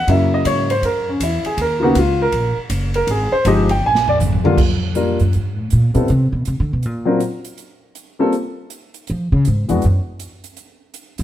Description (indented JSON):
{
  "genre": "jazz piano trio",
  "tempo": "160 BPM",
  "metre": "4/4",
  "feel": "swing 65% on 8ths",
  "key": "unclear",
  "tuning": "A4 = 442 Hz",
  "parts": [
    { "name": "warm concert grand piano", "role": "melody", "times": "0.0-9.8 s", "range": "Db3 to Ab5", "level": "-17 LUFS", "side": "left 1 dB", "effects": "none" },
    { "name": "upright bass", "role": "bass", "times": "0.0-11.2 s", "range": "F#1 to F3", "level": "-18 LUFS", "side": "equal", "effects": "none" },
    { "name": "swinging big-band drum kit", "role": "drums", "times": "0.1-11.2 s", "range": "crash cymbal, hi-hat, kick drum, ride cymbal, snare drum, toms", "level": "-23 LUFS", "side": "right 1 dB", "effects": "none" }
  ],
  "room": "moderate stone room reverb, RT60 1.3 s",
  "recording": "band playing live in one room",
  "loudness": "-15 LUFS",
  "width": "side -12 dB against mid",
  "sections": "0.0-4.6 A section; 4.6-11.2 A section",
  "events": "grand piano solo 0.0-4.6; drum fill 3.8-4.6; upright bass solo 4.6-11.2",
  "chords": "0.1 Gb7; 1.6 Bmaj9 (rootless); 3.1 Fm9; 3.8 Bb; 4.6 Bb5; 6.1 Bm; 6.8 N.C.; 9.1 Fm; 9.8 N.C."
}